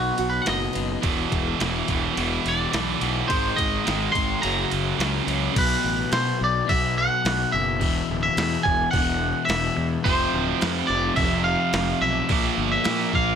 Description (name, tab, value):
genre	quiet-loud alternative rock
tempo	107 BPM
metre	4/4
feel	straight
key	unclear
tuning	A4 = 440 Hz
part	twangy electric guitar	melody	0.0-13.4 s	F#4 to C6	-24 LUFS	right 1 dB	slapback echo
part	picked steel-string acoustic guitar	arpeggios	0.0-1.0 s	B2 to B4	-32 LUFS	right 9 dB	none
part	crunchy overdriven guitar	riff	0.0-13.4 s	E2 to B3	-28 LUFS	left 10 dB	none
part	fuzz fingered electric bass	bass	0.0-13.3 s	D1 to B2	-28 LUFS	right 1 dB	overdrive
part	boom bap sampler-style drum kit	drums	0.2-13.3 s	crash cymbal, kick drum, ride cymbal, snare drum	-28 LUFS	right 1 dB	none
part	distorted electric guitar	riff	1.0-5.5, 10.0-13.4 s	E2 to Bb3	-26 LUFS	right 14 dB	overdrive
room	digital ambience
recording	none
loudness	-20 LUFS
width	side -7 dB against mid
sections	0.0-5.6 A section; 5.6-13.4 B section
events	clean electric guitar solo 0.0-5.6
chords	0.0 B; 1.0 E5; 3.3 G#5; 4.4 F#5; 5.6 B5; 7.8 E5; 10.1 F5; 12.3 Bb5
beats	0.47 | 1.04 1.60 2.17 2.74 | 3.30 3.87 4.44 5.00 | 5.57 6.13 6.69 7.26 | 7.82 8.38 8.94 9.50 | 10.06 10.62 11.18 11.74 | 12.30 12.86